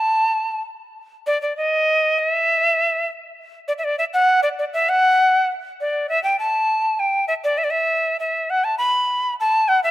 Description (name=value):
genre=andean folk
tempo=100 BPM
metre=2/4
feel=straight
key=unclear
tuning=A4 = 440 Hz
part: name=bright quena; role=solo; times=0.0-9.9 s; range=D5 to B5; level=-17 LUFS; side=equal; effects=none
room=light reverb, small room ambience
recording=rough home demo mix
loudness=-17 LUFS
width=side -15 dB against mid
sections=0.0-3.7 A section; 3.7-9.9 A section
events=none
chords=none